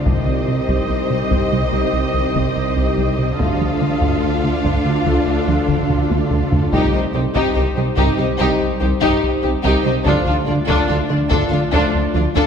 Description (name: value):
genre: cinematic, hybrid orchestral and electronic film score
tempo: 72 BPM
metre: 4/4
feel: straight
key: C dorian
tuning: A4 = 440 Hz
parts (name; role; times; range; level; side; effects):
- rich symphonic violin section; second line; 0.0-12.5 s; D4 to F5; -23 LUFS; left 4 dB; none
- clear symphonic viola section; accompaniment; 0.0-12.5 s; D4 to Eb5; -23 LUFS; right 1 dB; none
- hollow soft pad; sustained chords; 0.0-12.5 s; D3 to D5; -24 LUFS; left 2 dB; chorus
- warm symphonic cello section; bass; 0.0-12.4 s; C3 to D3; -27 LUFS; right 2 dB; none
- mellow French horn section; sustained chords; 0.1-12.0 s; F3 to F4; -27 LUFS; left 2 dB; none
- resonant blip pluck; arpeggios; 0.1-12.5 s; C3 to D4; -28 LUFS; equal; none
- rubbery square bass; riff; 0.1-12.5 s; C2 to D3; -22 LUFS; right 1 dB; none
- dark symphonic double bass section; bass; 0.1-12.2 s; C2 to D2; -26 LUFS; right 2 dB; none
- warm tuba; bass; 0.1-12.2 s; C2 to D2; -25 LUFS; right 2 dB; none
- taiko ensemble; drums; 0.1-12.5 s; none; -25 LUFS; equal; none
room: wet scoring stage reverb, RT60 1.8 s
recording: heard from further back in the room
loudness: -15 LUFS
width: side -7 dB against mid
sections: 0.0-12.5 A section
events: drum fill 5.9-6.7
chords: 0.1 Cm; 3.4 Dm; 6.7 Cm; 10.1 Dm